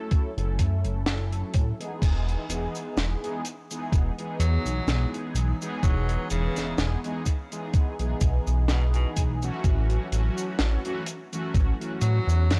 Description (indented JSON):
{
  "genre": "vaporwave",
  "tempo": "63 BPM",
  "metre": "4/4",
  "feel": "swing 55% on 16ths",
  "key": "E major",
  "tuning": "A4 = 440 Hz",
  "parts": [
    { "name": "mellow synth brass", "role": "accompaniment", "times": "0.0-12.6 s", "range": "E3 to A4", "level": "-35 LUFS", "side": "equal", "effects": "phaser, lush chorus, tape echo" },
    { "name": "electronic kick drum", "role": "drums", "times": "0.1-11.8 s", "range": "none", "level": "-25 LUFS", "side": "equal", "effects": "none" },
    { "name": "tight funk drum kit", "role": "drums", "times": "0.1-12.6 s", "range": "cabasa, crash cymbal, hi-hat, snare drum", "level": "-34 LUFS", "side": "equal", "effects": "none" },
    { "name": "chorused synth bass", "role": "bass", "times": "0.4-12.6 s", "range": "E1 to A2", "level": "-27 LUFS", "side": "equal", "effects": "tube saturation" },
    { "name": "bright tenor saxophone", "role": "melody", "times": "4.4-12.6 s", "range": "B2 to F#3", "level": "-38 LUFS", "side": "equal", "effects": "tape echo" }
  ],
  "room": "studio reverb",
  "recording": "dry, gritty hardware recording, cassette tape",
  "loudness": "-26 LUFS",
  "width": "mono",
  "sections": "0.0-2.0 A section; 2.0-12.6 B section",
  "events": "none",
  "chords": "0.0 A6; 2.0 Emaj7; 9.6 A6"
}